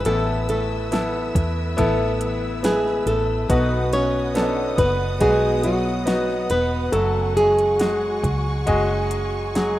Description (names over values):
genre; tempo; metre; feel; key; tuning
pop ballad; 70 BPM; 4/4; straight; unclear; A4 = 440 Hz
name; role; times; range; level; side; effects
flamenco guitar; melody; 0.0-9.8 s; F#3 to C#5; -22 LUFS; equal; none
bright concert grand piano; accompaniment; 0.0-9.8 s; A2 to B4; -25 LUFS; left 1 dB; none
rich symphonic string section; sustained chords; 0.0-9.8 s; F#4 to E6; -33 LUFS; equal; none
picked steel-string acoustic guitar; arpeggios; 0.0-9.8 s; F#2 to G#4; -32 LUFS; left 2 dB; tape echo
vintage muted fingered electric bass; bass; 0.0-9.8 s; E1 to E2; -26 LUFS; equal; none
smooth R&B drum kit; drums; 0.1-9.8 s; hi-hat, kick drum, snare drum; -25 LUFS; equal; overdrive
room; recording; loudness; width
moderate lush hall reverb, RT60 2.7 s; rough home demo mix; -18 LUFS; side -14 dB against mid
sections
0.0-9.8 A section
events
none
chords
0.1 Asus2; 3.5 B; 6.9 F#madd9